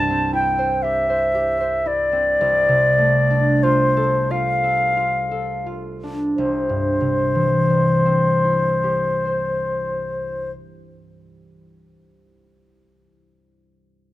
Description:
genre	classical, impressionist duo for flute and harp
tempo	28-40 BPM (dotted quarters)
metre	6/8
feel	rubato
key	C major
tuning	A4 = 441 Hz
part	concert flute	melody	0.0-10.5 s	C5 to A5	-18 LUFS	left 1 dB	none
part	concert harp	accompaniment	0.0-11.8 s	C2 to C5	-21 LUFS	right 1 dB	none
room	light reverb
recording	close, detailed microphones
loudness	-17 LUFS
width	side -16 dB against mid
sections	0.0-6.4 A section; 6.4-10.4 B section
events	slowing down 0.0-6.4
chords	0.0 C; 2.4 Dm7/C; 6.4 C

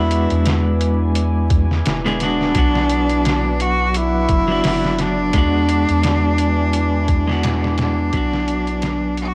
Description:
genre	trip hop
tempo	86 BPM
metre	4/4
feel	swing 56% on 16ths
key	unclear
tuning	A4 = 439 Hz
part	rich cello	melody	0.0-9.3 s	D4 to F#4	-22 LUFS	equal	cassette tape, tape echo, plate reverb
part	clean electric guitar	accompaniment	0.0-9.3 s	F#3 to G#4	-25 LUFS	equal	tremolo, cassette tape, tape echo, plate reverb
part	deep dark ambient pad	sustained chords	0.0-9.3 s	D4 to D6	-32 LUFS	equal	chorus, built-in reverb, vintage 12-bit sampler grit, cassette tape, plate reverb
part	soft dub sub bass	bass	0.0-9.3 s	E1 to E2	-23 LUFS	equal	none
part	trip hop sampler-style drum kit	drums	0.1-9.3 s	hi-hat, kick drum, snare drum	-24 LUFS	equal	cassette tape
room	light reverb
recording	home recording on cassette, vinyl crackle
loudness	-18 LUFS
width	mono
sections	0.0-9.3 A section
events	fade-out 6.3-9.3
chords	0.0 E7; 2.6 Bm; 5.3 E7; 8.1 Bm

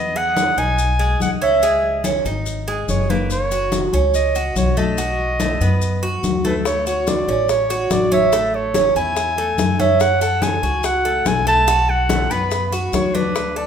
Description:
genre	latin, Cuban son and guajira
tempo	143 BPM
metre	4/4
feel	straight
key	unclear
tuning	A4 = 440 Hz
part	clear clarinet	melody	0.0-13.7 s	B4 to B5	-20 LUFS	equal	none
part	Cuban tres	arpeggios	0.0-13.7 s	G#3 to A4	-21 LUFS	right 4 dB	none
part	upright bass	bass	0.0-13.7 s	F#1 to F#2	-23 LUFS	equal	none
part	congas	percussion	0.2-13.7 s	none	-25 LUFS	left 5 dB	none
part	maracas	percussion	0.4-13.6 s	none	-33 LUFS	left 6 dB	none
part	bongos	percussion	6.7-13.7 s	none	-28 LUFS	left 5 dB	none
room	moderate large studio reverb, RT60 1.3 s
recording	minimal, uncompressed stereo recording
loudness	-16 LUFS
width	side -8 dB against mid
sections	0.0-13.7 A section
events	none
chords	0.0 Emaj7; 1.6 C#madd9; 3.3 F#; 5.0 B7; 6.7 Dmaj7; 8.3 Amaj7; 10.0 F#m; 11.7 B5

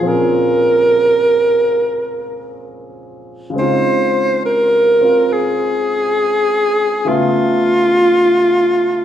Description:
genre	jazz ballad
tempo	68 BPM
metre	4/4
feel	swing 66% on 8ths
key	Bb minor, Db major from 3.5 s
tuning	A4 = 444 Hz
part	clear alto saxophone	melody	0.0-9.0 s	Fb4 to C5	-13 LUFS	equal	none
part	warm grand piano	accompaniment	0.0-9.0 s	Bb2 to E5	-20 LUFS	equal	none
room	wet concert hall reverb, RT60 1.9 s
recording	minimal, uncompressed stereo recording, lossy compression artefacts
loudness	-12 LUFS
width	side -10 dB against mid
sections	0.0-3.5 A section; 3.5-9.0 B section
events	none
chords	0.0 Bbm7; 3.5 Dbmaj7; 7.1 Db7alt

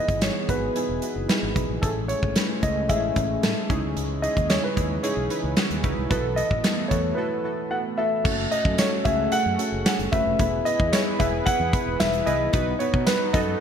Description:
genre	1980s-style pop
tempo	112 BPM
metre	4/4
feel	straight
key	E major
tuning	A4 = 440 Hz
part	dark concert grand piano	melody	0.0-13.4 s	A4 to F#5	-26 LUFS	left 1 dB	ping-pong delay
part	warm analog keys	accompaniment	0.0-13.6 s	A3 to B4	-29 LUFS	right 1 dB	chorus
part	chorused pulse-width pad	sustained chords	0.0-13.6 s	C#3 to D#5	-32 LUFS	right 1 dB	none
part	fretless electric bass	bass	0.1-13.5 s	E1 to B2	-29 LUFS	equal	none
part	big rock drum kit	drums	0.1-13.5 s	crash cymbal, hi-hat, kick drum, snare drum, tambourine	-25 LUFS	equal	gated reverb
room	moderate lush hall reverb, RT60 1.8 s, studio reverb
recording	bright 1980s-style digital production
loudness	-21 LUFS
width	side -8 dB against mid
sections	0.0-8.3 A section; 8.3-13.6 B section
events	break 7.2-8.3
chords	0.0 Emaj7; 1.8 Amaj7; 3.7 C#madd9; 6.1 B7sus4; 8.3 F#m; 10.4 E; 12.5 B

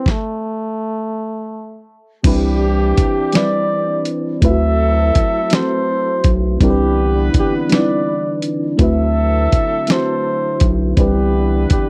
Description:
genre	slow six-eight R&B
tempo	55 BPM (dotted quarters)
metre	6/8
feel	straight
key	C major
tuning	A4 = 442 Hz
part	breathy flugelhorn	melody	0.0-11.9 s	A3 to E5	-22 LUFS	equal	none
part	mellow FM electric piano	accompaniment	0.0-11.9 s	G3 to C5	-23 LUFS	equal	chorus, phaser
part	dusty soul sampler-style drum kit	drums	0.1-11.9 s	crash cymbal, hi-hat, kick drum, snare drum	-18 LUFS	equal	none
part	tonewheel organ	sustained chords	2.2-11.9 s	D3 to E4	-26 LUFS	equal	overdrive, slow rotary speaker
part	warm horn section	stabs	2.2-11.9 s	E3 to B4	-30 LUFS	equal	none
part	round analog bass	bass	2.3-11.8 s	B1 to D2	-20 LUFS	equal	none
room	little or no reverb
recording	dry, close 1970s-style studio recording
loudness	-16 LUFS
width	mono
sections	0.0-2.2 A section; 2.2-11.9 B section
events	stop 0.1-2.2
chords	0.1 N.C.; 2.2 Cmaj9; 4.4 D13; 6.6 Cmaj9; 8.8 D13; 11.0 Cmaj9

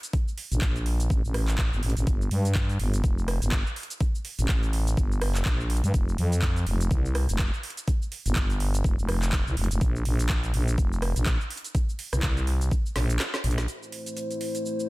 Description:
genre	bass house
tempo	124 BPM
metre	4/4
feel	swing 58% on 16ths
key	unclear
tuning	A4 = 440 Hz
part	garage drum kit	drums	0.0-14.9 s	handclaps, hi-hat, rim click, shaker, snare drum	-33 LUFS	right 1 dB	overdrive, small room ambience
part	electronic kick drum	drums	0.1-12.8 s	none	-26 LUFS	equal	overdrive, small room ambience
part	growling FM bass	bass	0.5-13.7 s	F1 to G2	-25 LUFS	equal	tube saturation, sidechain pumping
part	dark analog pad	sustained chords	13.7-14.9 s	A3 to C5	-30 LUFS	left 1 dB	chorus, sidechain pumping
room	little or no reverb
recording	dense, heavily limited modern master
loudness	-24 LUFS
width	side -21 dB against mid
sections	0.0-13.7 A section; 13.7-14.9 B section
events	filter sweep on FM bass 0.0-13.7; drum fill 13.0-13.7; kick drops out 13.2-13.7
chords	0.0 Gmadd9 (rootless); 2.1 N.C.; 5.9 Fsus2; 9.8 Bbsus2; 13.7 Am

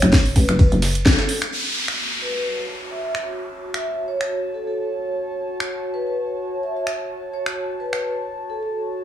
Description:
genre	bass house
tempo	129 BPM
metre	4/4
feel	swing 56% on 16ths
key	F# minor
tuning	A4 = 437 Hz
part	vibraphone with medium mallets	melody	0.0-8.7 s	A4 to E5	-27 LUFS	equal	dub echo
part	hollow knocking FM bass	bass	0.0-1.2 s	F#1 to A1	-18 LUFS	equal	tube saturation, sidechain pumping
part	dusty soul sampler-style drum kit	drums	0.0-1.5 s	hi-hat, ride cymbal, snare drum	-32 LUFS	right 1 dB	high-pass filter on cymbals, high-pass filter on snare, high-pass filter on hats
part	house drum kit	drums	0.0-8.0 s	finger snaps, hi-hat, snare drum	-23 LUFS	equal	none
part	electronic kick drum	drums	0.1-1.2 s	none	-15 LUFS	equal	none
part	downlifter	sound effects	1.5-5.2 s	none	-27 LUFS	equal	none
part	warbly tape-like pad	texture	2.3-9.0 s	F#4 to A5	-28 LUFS	equal	chorus, built-in reverb, phaser, sidechain pumping
room	moderate digital room reverb, RT60 1.1 s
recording	none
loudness	-20 LUFS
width	side -11 dB against mid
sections	0.0-1.5 A section; 1.5-9.0 B section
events	band accent 1.1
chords	0.0 F#m

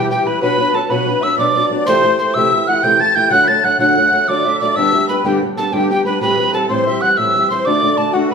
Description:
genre	celtic folk, Celtic slip jig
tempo	124 BPM (dotted quarters)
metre	9/8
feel	straight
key	unclear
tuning	A4 = 440 Hz
part	mellow hollow wooden whistle	melody	0.0-8.3 s	F#5 to A6	-15 LUFS	right 1 dB	none
part	musette accordion	second line	0.0-8.3 s	F#4 to B5	-19 LUFS	left 3 dB	none
part	fingerpicked steel-string acoustic guitar	accompaniment	0.0-8.3 s	G2 to G4	-18 LUFS	equal	none
room	wet large studio reverb, RT60 0.8 s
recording	band playing live in one room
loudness	-12 LUFS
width	side -6 dB against mid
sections	0.0-8.3 A section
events	none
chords	0.4 Bm; 1.9 Am7/C; 3.3 D; 4.8 G; 6.2 Am7; 7.7 D

